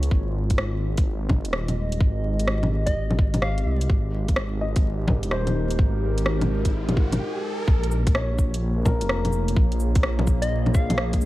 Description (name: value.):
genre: future garage.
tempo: 127 BPM.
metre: 4/4.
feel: swing 66% on 16ths.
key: Bb dorian.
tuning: A4 = 439 Hz.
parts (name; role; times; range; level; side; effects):
dark upright piano; accompaniment; 0.0-0.3, 4.6-11.3 s; Bb4 to Eb5; -34 LUFS; left 2 dB; sidechain pumping, dub echo.
warbly tape-like pad; sustained chords; 0.0-11.3 s; Ab3 to Eb5; -31 LUFS; equal; chorus, built-in reverb, sidechain pumping.
swelling detuned saw bass; bass; 0.0-11.3 s; Eb1 to Db2; -25 LUFS; equal; sidechain pumping.
garage drum kit; drums; 0.0-11.3 s; bongos, cabasa, hi-hat, rim click; -26 LUFS; equal; overdrive, small room reverb.
electronic kick drum; drums; 0.1-11.2 s; none; -20 LUFS; equal; overdrive, small room reverb.
soft struck synth lead; melody; 2.9-3.8, 10.4-11.1 s; Eb5 to F5; -31 LUFS; left 1 dB; chorus, dub echo.
riser; sound effects; 5.7-7.7 s; none; -35 LUFS; right 1 dB; none.
room: digital ambience.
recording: dark, warm production, vinyl crackle.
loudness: -20 LUFS.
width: side -17 dB against mid.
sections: 0.0-7.7 A section; 7.7-11.3 B section.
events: riser 5.7-7.7; break 7.2-7.7.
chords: 0.1 Fm7; 3.9 Abmaj9; 7.7 Bbm7.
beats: | 0.12 0.59 1.06 1.53 | 2.01 2.48 2.95 3.42 | 3.90 4.37 4.84 5.31 | 5.79 6.26 6.73 7.20 | 7.67 8.15 8.62 9.09 | 9.56 10.04 10.51 10.98.